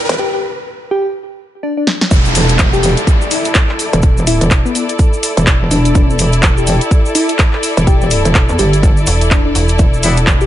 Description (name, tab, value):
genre	bass house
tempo	125 BPM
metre	4/4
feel	swing 59% on 16ths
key	E minor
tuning	A4 = 440 Hz
part	riser and downlifter	sound effects	0.0-6.0 s	none	-20 LUFS	right 1 dB	none
part	warm studio string section	texture	0.0-10.5 s	E4 to G5	-20 LUFS	left 1 dB	sidechain pumping
part	metallic wobble bass	bass	0.1-10.5 s	E1 to E2	-13 LUFS	equal	distortion, chorus, tube saturation, sidechain pumping, high-pass filter
part	house drum kit	drums	0.1-10.4 s	handclaps, hi-hat, snare drum	-17 LUFS	equal	small room ambience
part	soft struck synth lead	melody	0.2-10.5 s	B3 to G4	-19 LUFS	left 2 dB	chorus, tape echo
part	electronic kick drum	drums	2.1-10.4 s	none	-11 LUFS	equal	small room ambience
part	cabasa	percussion	2.1-10.5 s	none	-25 LUFS	right 1 dB	none
part	metallic FM bass	bass	9.1-9.8 s	E1	-14 LUFS	equal	overdrive, sidechain pumping
part	clear horn section	stabs	10.0-10.2 s	G3 to E4	-19 LUFS	left 3 dB	sidechain pumping, tape echo
room	digital ambience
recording	nothing above 11.0 kHz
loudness	-10 LUFS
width	side -12 dB against mid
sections	0.0-2.1 A section; 2.1-10.5 B section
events	build-up 0.0-2.1; riser 0.0; break 0.2-2.1; drum fill 1.9; drop 2.1-10.5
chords	0.0 Em; 2.1 N.C.